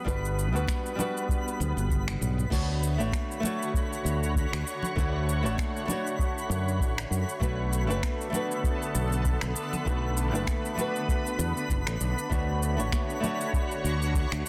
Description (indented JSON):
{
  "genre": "sunset chillout",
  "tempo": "98 BPM",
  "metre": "4/4",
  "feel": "swing 56% on 16ths",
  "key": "D major",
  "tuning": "A4 = 443 Hz",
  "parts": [
    { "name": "flamenco guitar", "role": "accompaniment", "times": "0.0-14.5 s", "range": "G3 to C#5", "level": "-36 LUFS", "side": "equal", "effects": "digital delay" },
    { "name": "shimmering ambient pad", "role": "sustained chords", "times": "0.0-14.5 s", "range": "D3 to C#5", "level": "-37 LUFS", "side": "equal", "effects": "chorus, built-in reverb" },
    { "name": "twinkling granular texture", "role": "texture", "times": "0.0-14.5 s", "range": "B5", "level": "-44 LUFS", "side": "equal", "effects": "built-in reverb" },
    { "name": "fingered electric bass", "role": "bass", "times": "0.1-14.4 s", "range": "F#1 to F#2", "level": "-31 LUFS", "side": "equal", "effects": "none" },
    { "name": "electronic kick drum", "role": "drums", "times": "0.1-14.3 s", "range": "none", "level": "-32 LUFS", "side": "equal", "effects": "small room ambience" },
    { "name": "smooth R&B drum kit", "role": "drums", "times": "0.1-14.5 s", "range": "crash cymbal, finger snaps, shaker, toms", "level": "-39 LUFS", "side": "equal", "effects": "small room ambience, soft clipping on snare" },
    { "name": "congas", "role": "percussion", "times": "0.7-13.4 s", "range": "none", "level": "-40 LUFS", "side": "equal", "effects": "none" }
  ],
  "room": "light reverb",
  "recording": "dense, heavily limited modern master",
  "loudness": "-29 LUFS",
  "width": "mono",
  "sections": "0.0-14.5 A section",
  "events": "drum fill 1.6-2.5",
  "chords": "0.0 Gmaj7; 2.5 Dmaj7; 7.4 Bm7; 12.3 Dmaj7",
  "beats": "| 0.07 0.68 1.29 1.90 | 2.52 3.13 3.74 4.35 | 4.96 5.58 6.19 6.80 | 7.41 8.03 8.64 9.25 | 9.86 10.47 11.09 11.70 | 12.31 12.92 13.54 14.15"
}